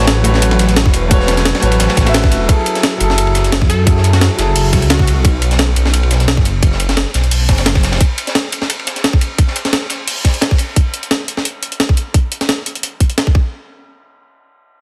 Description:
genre	liquid drum and bass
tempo	174 BPM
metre	4/4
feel	swing 54% on 16ths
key	F# minor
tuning	A4 = 440 Hz
part	warm concert grand piano	accompaniment	0.0-5.3 s	F#3 to E5	-20 LUFS	equal	digital delay
part	glassy FM pad	sustained chords	0.0-2.5 s	F#3 to C#5	-24 LUFS	equal	ensemble chorus, built-in reverb, sidechain pumping
part	swelling detuned saw bass	bass	0.0-8.0 s	E1 to F#2	-16 LUFS	equal	none
part	crunchy breakbeat drum kit	drums	0.0-10.7 s	hi-hat, ride cymbal, snare drum	-24 LUFS	equal	high-pass filter on cymbals, high-pass filter on hats, high-pass filter on snare, high-pass filter on room
part	breakbeat sampler-style drum kit	drums	0.1-13.3 s	hi-hat, snare drum	-20 LUFS	equal	none
part	electronic kick drum	drums	0.9-13.4 s	none	-15 LUFS	equal	none
part	plucky unison lead	melody	3.7-5.2 s	F#4 to A4	-28 LUFS	equal	phaser, delay
room	light reverb, small room ambience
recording	dense, heavily limited modern master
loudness	-14 LUFS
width	mono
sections	0.0-2.5 A section; 2.5-13.5 B section; 13.5-14.8 C section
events	drop 0.0-2.5; band accent 2.1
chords	0.0 A69; 2.5 F#m9; 5.2 B5; 7.8 Esus2; 10.8 N.C.

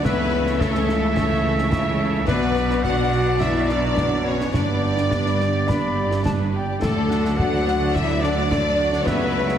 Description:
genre	cinematic, heroic adventure film score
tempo	106 BPM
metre	4/4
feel	straight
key	D major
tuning	A4 = 440 Hz
part	rich symphonic violin section	melody	0.0-9.6 s	A4 to F#5	-31 LUFS	left 4 dB	none
part	warm clarinet	second line	0.0-9.6 s	A4 to F#5	-30 LUFS	left 2 dB	none
part	warm symphonic violin section	second line	0.0-9.6 s	A4 to F#5	-30 LUFS	left 3 dB	none
part	rich symphonic viola section	accompaniment	0.0-9.6 s	D4 to F#5	-31 LUFS	right 1 dB	none
part	clear trombone section	sustained chords	0.0-9.6 s	E3 to B3	-30 LUFS	right 2 dB	none
part	dark French horn section	sustained chords	0.0-9.6 s	A3 to F#4	-25 LUFS	left 3 dB	none
part	rich symphonic double bass section	bass	0.0-9.6 s	G1 to D2	-26 LUFS	right 2 dB	none
part	concert snare drum, concert bass drum and clash cymbals	drums	0.0-9.6 s	none	-27 LUFS	equal	none
part	clear trumpet	stabs	0.1-9.6 s	D5 to E5	-29 LUFS	right 2 dB	none
part	rich symphonic cello section	bass	0.1-9.6 s	G2 to D3	-27 LUFS	right 2 dB	none
part	concert flute	second line	5.1-6.8 s	D5 to B5	-30 LUFS	left 2 dB	none
room	wet scoring stage reverb, RT60 2.0 s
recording	heavily compressed radio sound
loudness	-18 LUFS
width	side -9 dB against mid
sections	0.0-9.6 A section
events	none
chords	0.1 A/C#; 2.3 Bm; 4.5 G; 6.8 D; 9.1 A/C#

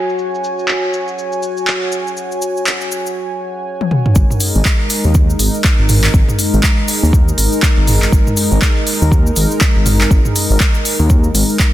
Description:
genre	afro house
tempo	121 BPM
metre	4/4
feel	swing 60% on 16ths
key	unclear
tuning	A4 = 439 Hz
part	warm analog pad	sustained chords	0.0-11.7 s	G#3 to G#5	-19 LUFS	equal	chorus, sidechain pumping
part	cabasa	percussion	0.1-11.7 s	none	-25 LUFS	left 2 dB	none
part	deep house drum kit	drums	0.7-11.7 s	handclaps, hi-hat, toms	-17 LUFS	equal	none
part	dark detuned saw bass	bass	4.2-11.4 s	G#1 to D#2	-14 LUFS	equal	sidechain pumping
part	electronic kick drum	drums	4.2-11.7 s	none	-12 LUFS	equal	none
room	digital ambience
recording	dense, heavily limited modern master, low-pass filter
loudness	-12 LUFS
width	side -14 dB against mid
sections	0.0-4.2 A section; 4.2-11.7 B section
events	filter sweep on drum 0.0-4.2; filter sweep 0.0-4.2; drum fill 3.8-4.2; drop 4.2-11.7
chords	0.0 F#sus2; 4.2 G#5

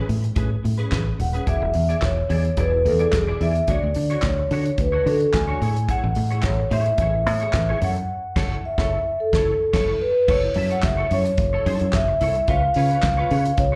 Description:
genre	disco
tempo	109 BPM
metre	4/4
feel	straight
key	unclear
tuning	A4 = 440 Hz
part	clean electric guitar	accompaniment	0.0-13.8 s	C#4 to E5	-34 LUFS	equal	ensemble chorus, slapback echo
part	fingered electric bass	bass	0.1-13.8 s	D#1 to D3	-25 LUFS	equal	none
part	damped 70s drum kit	drums	0.1-13.7 s	crash cymbal, handclaps, hi-hat, kick drum, snare drum	-28 LUFS	equal	none
part	vibraphone with soft mallets	melody	1.2-13.8 s	G#4 to G#5	-24 LUFS	equal	slapback echo
room	small room ambience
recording	live gig heard through the venue's PA, club reverb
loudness	-21 LUFS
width	mono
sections	0.0-1.5 A section; 1.5-10.3 B section; 10.3-13.8 C section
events	band accent 8.1-10.3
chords	0.0 Amaj9; 1.5 E7; 3.7 Dmaj7; 5.6 Amaj7; 7.8 F#m7; 12.5 C#7

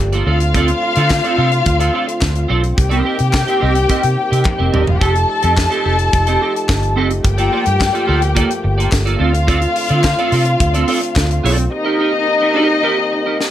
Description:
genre	disco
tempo	107 BPM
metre	4/4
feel	straight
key	C dorian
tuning	A4 = 437 Hz
part	clean electric guitar	accompaniment	0.0-13.4 s	Bb3 to Eb5	-20 LUFS	right 5 dB	analog chorus
part	mellow French horn section	sustained chords	0.0-13.5 s	D3 to G4	-23 LUFS	equal	none
part	vintage muted fingered electric bass	bass	0.0-11.7 s	Eb1 to D3	-16 LUFS	equal	none
part	tight funk drum kit	drums	0.1-13.5 s	hi-hat, kick drum, snare drum, toms	-19 LUFS	equal	none
part	dark studio string section	second line	0.3-13.5 s	D4 to A5	-18 LUFS	left 3 dB	none
part	group handclap	percussion	1.1-11.3 s	none	-29 LUFS	left 5 dB	none
room	light reverb, small room ambience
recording	none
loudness	-13 LUFS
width	side -12 dB against mid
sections	0.0-13.5 A section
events	drum fill 4.5-5.0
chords	0.3 Dm7; 2.8 Cm7; 5.0 F9; 7.2 Gm9; 9.2 Dm7; 11.7 Cm7

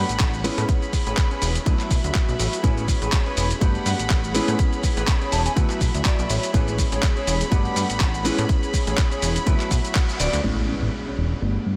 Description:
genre	filtered disco house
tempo	123 BPM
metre	4/4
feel	swing 56% on 16ths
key	A major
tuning	A4 = 440 Hz
part	warm baby grand piano	accompaniment	0.0-11.8 s	F#3 to F#5	-32 LUFS	equal	phaser, sidechain pumping, low-pass filter
part	dark studio string section	sustained chords	0.0-11.8 s	G3 to B5	-32 LUFS	equal	sidechain pumping, low-pass filter
part	mellow electric guitar	riff	0.0-11.5 s	C#4 to A5	-34 LUFS	equal	sidechain pumping, low-pass filter
part	plucky analog bass	bass	0.0-11.7 s	D1 to A2	-27 LUFS	equal	sidechain pumping, low-pass filter
part	dusty soul sampler-style drum kit	drums	0.1-11.6 s	handclaps, hi-hat, shaker	-30 LUFS	equal	overdrive, sidechain pumping on hats, low-pass filter on hats, sidechain pumping on perc, low-pass filter on perc, low-pass filter on snare, low-pass filter on room
part	electronic kick drum	drums	0.2-10.1 s	none	-23 LUFS	equal	none
part	impact	sound effects	10.4-11.8 s	none	-34 LUFS	equal	none
room	light reverb, digital ambience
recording	none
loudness	-22 LUFS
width	mono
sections	0.0-10.4 A section; 10.4-11.8 B section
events	clean electric guitar fill 5.1-6.5, 9.7-10.4; band accent 10.0; impact 10.4-11.8; filter sweep 10.4-11.8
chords	0.4 Amaj9; 1.7 D69; 2.6 Amaj9; 3.6 Gmaj7; 4.3 Amaj9; 5.6 D69; 6.5 Amaj9; 7.5 Gmaj7; 8.2 Amaj9; 9.5 D69; 10.4 Amaj9

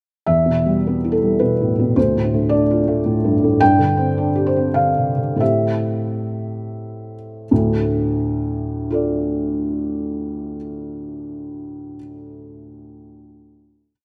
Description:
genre	neoclassical minimalist piano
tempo	82-111 BPM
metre	3/4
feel	rubato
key	D dorian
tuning	A4 = 439 Hz
part	felt-muted upright piano	solo	0.3-13.9 s	D2 to G5	-20 LUFS	equal	none
room	moderate lush hall reverb, RT60 2.3 s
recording	rough home demo mix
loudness	-19 LUFS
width	mono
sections	0.3-7.5 A section; 7.5-11.7 final chord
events	slowing down 2.8-7.5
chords	0.3 Em; 2.0 Dm; 3.6 Gsus4; 5.4 Am7; 7.5 Dm

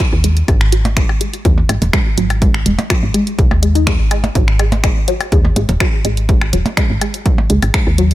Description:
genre	minimal techno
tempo	124 BPM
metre	4/4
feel	straight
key	G# minor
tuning	A4 = 440 Hz
part	resonant blip pluck	riff	0.0-8.0 s	F#3 to D#4	-20 LUFS	left 1 dB	phaser, sidechain pumping, ping-pong delay
part	electronic kick drum	drums	0.0-7.8 s	none	-15 LUFS	equal	none
part	garage drum kit	drums	0.0-8.1 s	finger snaps, hi-hat	-21 LUFS	equal	none
part	woody FM bass	bass	0.1-8.1 s	D#1 to D#2	-15 LUFS	equal	sidechain pumping
part	percussion blips	percussion	0.5-7.7 s	none	-22 LUFS	equal	overdrive, tape echo
room	little or no reverb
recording	none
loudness	-12 LUFS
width	side -15 dB against mid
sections	0.0-8.1 A section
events	none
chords	0.0 G#5

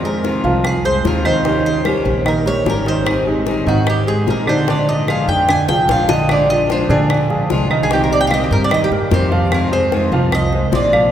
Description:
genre	latin, Cuban son and guajira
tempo	149 BPM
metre	4/4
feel	straight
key	unclear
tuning	A4 = 442 Hz
part	fingerpicked steel-string acoustic guitar	accompaniment	0.0-11.1 s	C3 to Ab4	-22 LUFS	left 3 dB	none
part	dark concert grand piano	arpeggios	0.0-11.1 s	D3 to F5	-18 LUFS	right 2 dB	none
part	upright bass	bass	0.0-11.1 s	Ab1 to Bb2	-20 LUFS	equal	none
part	Cuban tres	melody	0.1-11.1 s	Gb4 to Ab5	-19 LUFS	equal	none
part	bongos	percussion	0.2-11.1 s	none	-25 LUFS	left 4 dB	none
part	claves	percussion	0.6-11.1 s	none	-28 LUFS	right 3 dB	none
room	wet cathedral reverb, RT60 6.0 s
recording	recorded in a church or concert hall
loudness	-13 LUFS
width	side -10 dB against mid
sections	0.0-11.1 A section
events	Cuban tres solo 0.0-11.1; drum fill 5.7-6.3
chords	0.0 Fm7; 1.5 Eb7; 3.1 Abmaj7; 4.7 Bb7; 7.9 Cm7; 9.5 Fm7

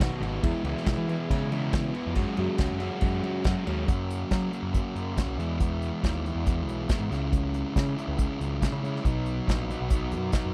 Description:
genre	indie rock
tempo	139 BPM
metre	4/4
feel	straight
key	F# mixolydian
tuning	A4 = 442 Hz
part	overdriven electric guitar	riff	0.0-3.9 s	B2 to F#4	-35 LUFS	equal	lush chorus, slapback echo
part	sludgy distorted guitar	riff	0.0-10.5 s	B2 to F#4	-34 LUFS	equal	overdrive
part	growling picked electric bass	bass	0.0-10.5 s	G#1 to F#3	-33 LUFS	equal	overdrive
part	unplugged drum kit	drums	0.0-10.4 s	hi-hat, kick drum, ride cymbal, snare drum	-30 LUFS	equal	none
room	little or no reverb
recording	dry, close 1970s-style studio recording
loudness	-28 LUFS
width	mono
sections	0.0-3.9 A section; 3.9-10.5 B section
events	none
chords	0.4 E; 2.2 F#sus2; 3.9 F#; 5.4 Emaj7; 7.1 C#m; 9.1 Bmaj7

